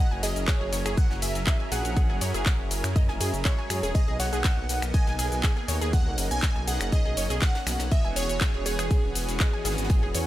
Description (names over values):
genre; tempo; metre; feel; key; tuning
progressive house; 121 BPM; 4/4; straight; unclear; A4 = 441 Hz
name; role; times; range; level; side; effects
plucky unison lead; melody; 0.0-10.3 s; G#4 to G#5; -33 LUFS; right 2 dB; digital delay
lush unison pad; sustained chords; 0.0-10.3 s; E3 to A#4; -35 LUFS; equal; chorus, sidechain pumping
wide unison pluck; arpeggios; 0.0-10.2 s; G#3 to G#5; -35 LUFS; right 1 dB; sidechain pumping, digital delay
dark detuned saw bass; bass; 0.1-10.3 s; E1 to F#2; -30 LUFS; equal; sidechain pumping
soft brush drum kit; drums; 0.1-10.3 s; ride cymbal, snare drum; -42 LUFS; equal; none
house drum kit; drums; 0.2-10.3 s; finger snaps, handclaps, hi-hat, ride cymbal, shaker; -31 LUFS; left 1 dB; none
electronic kick drum; drums; 0.5-10.0 s; none; -24 LUFS; equal; none
room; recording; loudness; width
little or no reverb; none; -23 LUFS; side -14 dB against mid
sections
0.0-10.3 A section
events
none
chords
0.0 F#7; 3.9 Bmaj7; 7.9 E6